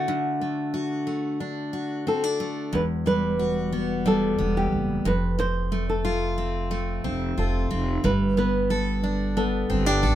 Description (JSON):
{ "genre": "acoustic pop", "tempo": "90 BPM", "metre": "4/4", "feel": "straight", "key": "unclear", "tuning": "A4 = 438 Hz", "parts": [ { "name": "flamenco guitar", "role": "melody", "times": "0.0-10.2 s", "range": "F#4 to C5", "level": "-28 LUFS", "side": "equal", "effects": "none" }, { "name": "picked steel-string acoustic guitar", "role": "accompaniment", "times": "0.0-10.2 s", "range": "E2 to A4", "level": "-26 LUFS", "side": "equal", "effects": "none" }, { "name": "upright bass", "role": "bass", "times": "2.7-10.2 s", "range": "E1 to A1", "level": "-27 LUFS", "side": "right 1 dB", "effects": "none" } ], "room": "light reverb", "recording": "minimal, uncompressed stereo recording", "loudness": "-23 LUFS", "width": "side -12 dB against mid", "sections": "0.0-2.7 A section; 2.7-10.2 B section", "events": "none", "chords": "0.0 D; 2.7 Emadd9; 5.1 F; 8.0 Gadd9" }